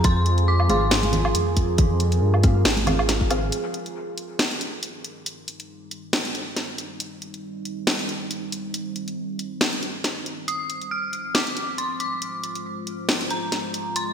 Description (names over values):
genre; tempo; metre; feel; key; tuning
deep dubstep; 138 BPM; 4/4; swing 55% on 16ths, half-time; C minor; A4 = 440 Hz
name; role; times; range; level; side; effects
dark detuned synth bell; melody; 0.0-3.0, 10.5-14.1 s; Bb5 to F6; -28 LUFS; equal; chorus, dub echo
deep dark ambient pad; sustained chords; 0.0-14.1 s; G3 to C5; -30 LUFS; right 2 dB; chorus, built-in reverb
dark detuned saw bass; bass; 0.0-3.5 s; Ab1 to G2; -21 LUFS; equal; none
electronic kick drum; drums; 0.0-3.3 s; none; -20 LUFS; equal; small room ambience
garage drum kit; drums; 0.0-14.1 s; hi-hat, snare drum, woodblock; -25 LUFS; equal; small room ambience, gated reverb
filtered dub chord stab; stabs; 0.7-3.4 s; C4 to F5; -30 LUFS; left 1 dB; chorus, dub echo
congas; percussion; 0.7-3.0 s; none; -30 LUFS; right 1 dB; dub echo
riser; sound effects; 14.0-14.1 s; none; -50 LUFS; right 1 dB; none
room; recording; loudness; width
moderate lush hall reverb, RT60 2.2 s; bright 1980s-style digital production; -21 LUFS; side -8 dB against mid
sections
0.0-3.5 A section; 3.5-14.1 B section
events
filter sweep on ambient pad 3.5-14.1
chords
0.0 Fm; 3.5 Cm; 10.5 Fm